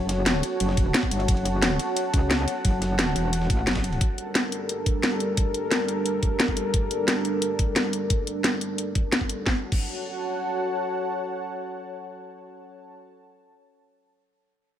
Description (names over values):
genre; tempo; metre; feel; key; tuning
dark technical drum and bass; 176 BPM; 4/4; straight; F# phrygian; A4 = 441 Hz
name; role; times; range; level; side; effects
dark analog pad; sustained chords; 0.0-13.0 s; G3 to A5; -28 LUFS; equal; chorus, vintage 12-bit sampler grit, sidechain pumping
metallic wobble bass; bass; 0.0-4.0 s; E1 to C#2; -26 LUFS; equal; chorus, overdrive
breakbeat sampler-style drum kit; drums; 0.1-4.0 s; ride cymbal, snare drum; -38 LUFS; right 1 dB; high-pass filter on cymbals, high-pass filter on snare
drum and bass drum kit; drums; 0.1-9.8 s; crash cymbal, hi-hat, snare drum; -26 LUFS; equal; none
electronic kick drum; drums; 0.8-9.8 s; none; -25 LUFS; equal; none
room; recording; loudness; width
moderate plate reverb, RT60 2.2 s; dreamy mix soaked in reverb; -22 LUFS; side -10 dB against mid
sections
0.0-9.5 A section; 9.5-12.2 B section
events
none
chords
0.0 F#m; 4.0 Gm; 9.5 F#m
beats
0.26 0.60 0.94 | 1.28 1.62 1.96 2.31 | 2.65 2.99 3.33 3.67 | 4.01 4.35 4.69 5.03 | 5.37 5.71 6.05 6.40 | 6.74 7.08 7.42 7.76 | 8.10 8.44 8.78 9.12 | 9.46 9.80 10.15 10.49 | 10.83 11.17 11.51 11.85